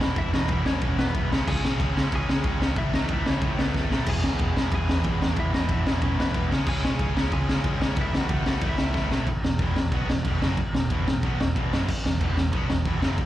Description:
punk rock; 184 BPM; 4/4; straight; E major; A4 = 439 Hz
cranked stack guitar; riff; 0.0-13.2 s; E2 to C#4; -31 LUFS; right 8 dB; overdrive, slapback echo
distorted electric guitar; riff; 0.0-13.2 s; E2 to C#4; -33 LUFS; left 11 dB; overdrive, slapback echo
overdriven picked electric bass; bass; 0.0-13.2 s; E1 to C#3; -28 LUFS; equal
raw garage drum kit; drums; 0.0-13.3 s; crash cymbal, kick drum, ride cymbal, snare drum; -25 LUFS; equal
lightly driven lead guitar; melody; 0.2-9.1 s; B3 to G#5; -34 LUFS; left 2 dB; slapback echo, tape echo
studio ambience; live gig heard through the venue's PA, club reverb; -22 LUFS; side -14 dB against mid
0.0-9.3 A section; 9.3-13.3 B section
drum fill 3.7-4.1, 9.0-9.3
0.0 E5; 1.3 C#5; 2.8 A/C#; 4.1 E; 6.5 C#5; 8.0 A/C#; 9.3 E5

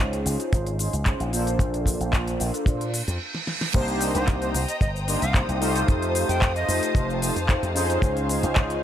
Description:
nu-disco, nu disco; 112 BPM; 4/4; straight; C dorian; A4 = 440 Hz
mellow synth brass; accompaniment; 0.0-8.8 s; A3 to C5; -27 LUFS; equal; chorus, digital delay
slap bass with an envelope filter; bass; 0.0-8.8 s; F1 to Bb2; -27 LUFS; equal
pop drum kit; drums; 0.0-8.8 s; crash cymbal, handclaps, hi-hat, shaker, snare drum; -29 LUFS; left 1 dB
kick drum; drums; 0.5-8.7 s; -22 LUFS; equal
reverse cymbal; sound effects; 2.9-3.7 s; -31 LUFS; right 5 dB
warm studio string section; sustained chords; 3.7-8.8 s; C5 to Eb6; -32 LUFS; left 1 dB; sidechain pumping
breathy bright jazz flute; melody; 4.2-7.1 s; C5 to G5; -33 LUFS; right 1 dB; dub echo
small room reverb; -21 LUFS; side -10 dB against mid
0.0-3.7 A section; 3.7-8.8 B section
reverse cymbal 2.9-3.7; stop 3.2-3.7; drum fill 3.3-3.7; drop 3.7-8.8
0.0 Dbmaj7; 1.3 Bbmaj7; 3.7 Cm7; 5.9 F7; 8.0 Dbmaj7

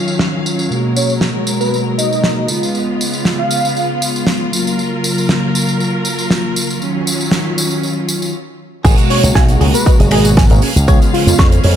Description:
nu-disco, nu disco; 118 BPM; 4/4; straight; G# dorian; A4 = 440 Hz
mellow synth brass; accompaniment; 0.0-11.8 s; B2 to F#4; -17 LUFS; equal; chorus
bright studio string section; sustained chords; 0.0-11.8 s; C#3 to E#5; -24 LUFS; equal; vintage 12-bit sampler grit, sidechain pumping
damped 70s drum kit; drums; 0.1-11.7 s; crash cymbal, finger snaps, hi-hat, snare drum, tambourine; -18 LUFS; right 1 dB; low-pass filter on cymbals, studio reverb, low-pass filter on hats, low-pass filter on snare, low-pass filter on perc, low-pass filter on room
wide unison lead; melody; 1.0-4.1, 9.1-11.3 s; E#4 to E#5; -20 LUFS; equal; dub echo
direct-recorded clean electric guitar; riff; 8.8-11.7 s; C#4 to C#6; -22 LUFS; right 3 dB; wide subtle chorus, dub echo
slap bass with an envelope filter; bass; 8.8-11.7 s; F#1 to E#2; -13 LUFS; equal
electronic kick drum; drums; 8.8-11.5 s; -11 LUFS; equal; overdrive, studio reverb
light reverb, studio reverb; -12 LUFS; side -10 dB against mid
0.0-8.8 A section; 8.8-11.8 B section
stop 8.3-8.8; drop 8.8-11.8
0.0 D#m9; 0.7 G#m9; 2.5 C#7; 4.5 F#maj7; 6.8 D#m9; 8.8 G#m9; 10.6 C#7

